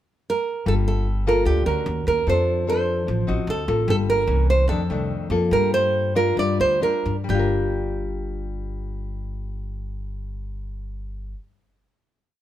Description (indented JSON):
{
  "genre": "bossa nova",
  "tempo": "127-150 BPM",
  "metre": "4/4",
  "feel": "straight",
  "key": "G minor",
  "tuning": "A4 = 442 Hz",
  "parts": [
    { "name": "nylon-string guitar", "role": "melody", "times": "0.3-11.3 s", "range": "G4 to D5", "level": "-22 LUFS", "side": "right 3 dB", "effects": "none" },
    { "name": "nylon-string guitar", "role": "accompaniment", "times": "0.7-11.5 s", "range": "F2 to Bb4", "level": "-26 LUFS", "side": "left 4 dB", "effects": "none" },
    { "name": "upright bass", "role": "bass", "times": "0.7-11.3 s", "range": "G1 to G2", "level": "-25 LUFS", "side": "equal", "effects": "none" }
  ],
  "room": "light reverb",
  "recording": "band playing live in one room",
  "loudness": "-19 LUFS",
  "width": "side -12 dB against mid",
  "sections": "0.0-0.7 pickup bar; 0.7-7.3 A section; 7.3-11.1 final chord",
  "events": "slowing down 3.9-7.3",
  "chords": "0.0 N.C.; 0.7 Gm9; 1.9 Ebm7; 2.3 Dm7/F; 3.5 D7b9; 3.9 Gm9; 4.3 C7b9; 4.7 F6; 5.5 Gm9; 6.4 Gm7",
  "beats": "0.26 | 0.66 1.06 1.46 1.87 | 2.27 2.67 3.07 3.47 | 3.88 4.28 4.69 5.10 | 5.52 5.94 6.38 6.83 | 7.29 7.77 8.24 8.71 | 9.18 9.65 10.12 10.59"
}